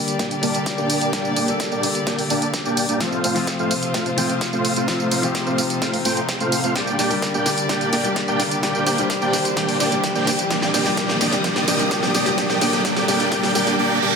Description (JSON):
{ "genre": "EDM, festival progressive house", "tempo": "128 BPM", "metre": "4/4", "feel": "straight", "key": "G minor", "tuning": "A4 = 439 Hz", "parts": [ { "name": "warm grand piano", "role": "accompaniment", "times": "0.0-14.2 s", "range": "F3 to A4", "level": "-25 LUFS", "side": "left 3 dB", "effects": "sidechain pumping, dub echo" }, { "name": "warm chamber string section", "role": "sustained chords", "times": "0.0-13.8 s", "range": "C3 to Eb6", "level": "-27 LUFS", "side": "equal", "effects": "sidechain pumping" }, { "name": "riser and reverse cymbal", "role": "sound effects", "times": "2.3-14.2 s", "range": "none", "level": "-30 LUFS", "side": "right 2 dB", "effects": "none" }, { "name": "big-room dance drum kit", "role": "drums", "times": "0.1-13.8 s", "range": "hi-hat, snare drum, tambourine", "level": "-24 LUFS", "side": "right 1 dB", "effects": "high-pass filter on snare, high-pass filter on hats, high-pass filter on perc" }, { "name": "dense compressed supersaw", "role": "riff", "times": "0.2-14.2 s", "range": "A3 to A5", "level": "-21 LUFS", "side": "right 1 dB", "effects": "sidechain pumping, low-pass filter, dub echo" }, { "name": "electronic kick drum", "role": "drums", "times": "0.2-13.4 s", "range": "none", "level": "-30 LUFS", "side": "equal", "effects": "high-pass filter on kick" } ], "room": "wet digital room reverb, RT60 1.3 s", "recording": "dense, heavily limited modern master", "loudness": "-18 LUFS", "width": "side -5 dB against mid", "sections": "0.0-14.2 A section", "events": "build-up 0.0-14.2; drum fill 0.0-13.8; filter sweep on supersaw synth 0.0-14.2; riser 2.3-13.8; reverse cymbal 13.3-14.2", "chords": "0.0 Gm; 3.0 F; 6.8 Gm; 10.5 Cm", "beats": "0.19 0.66 | 1.13 1.60 2.07 2.54 | 3.01 3.47 3.94 4.41 | 4.88 5.35 5.82 6.29 | 6.76 7.22 7.69 8.16 | 8.63 9.10 9.57 10.04 | 10.51 10.97 11.44 11.91 | 12.38 12.85 13.32 13.79" }